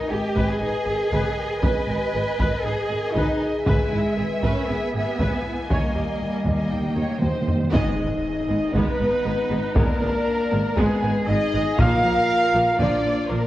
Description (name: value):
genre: cinematic, epic orchestral film score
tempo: 118 BPM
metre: 4/4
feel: straight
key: G# harmonic minor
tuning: A4 = 440 Hz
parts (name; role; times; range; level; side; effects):
- rich symphonic violin section; melody; 0.0-13.5 s; Cb4 to G#5; -33 LUFS; left 2 dB; none
- warm symphonic violin section; second line; 0.0-13.5 s; Ab4 to F5; -29 LUFS; equal; none
- mellow French horn section; sustained chords; 0.0-13.5 s; G3 to B4; -28 LUFS; left 3 dB; none
- warm symphonic cello section; bass; 0.0-13.4 s; Ab2 to B4; -28 LUFS; right 1 dB; none
- timpani; percussion; 0.0-0.3, 5.7-7.7, 11.8-12.5 s; G#2 to D#3; -30 LUFS; right 1 dB; none
- clear symphonic viola section; accompaniment; 0.1-13.4 s; F3 to C#5; -30 LUFS; right 1 dB; none
- rich studio double bass section; bass; 0.1-13.4 s; G#1 to D#2; -28 LUFS; right 1 dB; none
- taiko ensemble; drums; 0.4-13.3 s; none; -25 LUFS; equal; none
- warm trumpet section; stabs; 7.7-13.5 s; Ab4 to F5; -25 LUFS; right 1 dB; none
- impact; sound effects; 7.7-9.8 s; none; -36 LUFS; equal; none
room: wet scoring stage reverb, RT60 1.9 s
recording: worn, warbling old tape, cassette tape, warbly pitch drift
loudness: -20 LUFS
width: side -14 dB against mid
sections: 0.0-7.7 A section; 7.7-13.5 B section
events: timpani fill 5.7-7.7; drum fill 7.0-7.7; band accent 7.7-8.2; impact 7.7-9.8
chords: 0.0 G#m; 3.7 E/G#; 5.7 D#7; 7.7 Abm; 11.8 Bb